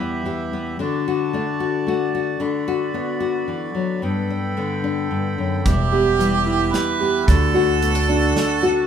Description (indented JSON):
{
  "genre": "acoustic folk duo or small band",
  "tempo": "111 BPM",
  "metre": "3/4",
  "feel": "straight",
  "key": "E minor",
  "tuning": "A4 = 440 Hz",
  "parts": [
    { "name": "nylon-string guitar", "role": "accompaniment", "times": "0.0-8.9 s", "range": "E2 to G4", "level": "-22 LUFS", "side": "left 5 dB", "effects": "none" },
    { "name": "hand-pumped harmonium", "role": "sustained chords", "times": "0.0-8.9 s", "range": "D3 to B5", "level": "-28 LUFS", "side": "right 2 dB", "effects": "none" },
    { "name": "warm harmonica", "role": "second line", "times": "5.7-8.9 s", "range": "G4 to B4", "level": "-22 LUFS", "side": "right 6 dB", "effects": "none" },
    { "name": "upright bass", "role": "bass", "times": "5.7-8.3 s", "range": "E1 to D2", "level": "-21 LUFS", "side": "right 1 dB", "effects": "none" },
    { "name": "natural country drum kit", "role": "drums", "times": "5.7-8.5 s", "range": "hi-hat, kick drum, snare drum", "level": "-22 LUFS", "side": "right 1 dB", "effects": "none" },
    { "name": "felt-muted upright piano", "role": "arpeggios", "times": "5.9-8.9 s", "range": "D4 to G4", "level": "-22 LUFS", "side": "right 4 dB", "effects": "none" }
  ],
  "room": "moderate recital hall reverb, RT60 1.7 s",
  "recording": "minimal, uncompressed stereo recording",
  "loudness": "-18 LUFS",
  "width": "side -8 dB against mid",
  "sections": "0.0-8.9 A section",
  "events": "none",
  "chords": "0.0 Em; 0.8 D; 2.4 Bm/D; 4.0 Gadd9; 5.7 Em; 7.3 D"
}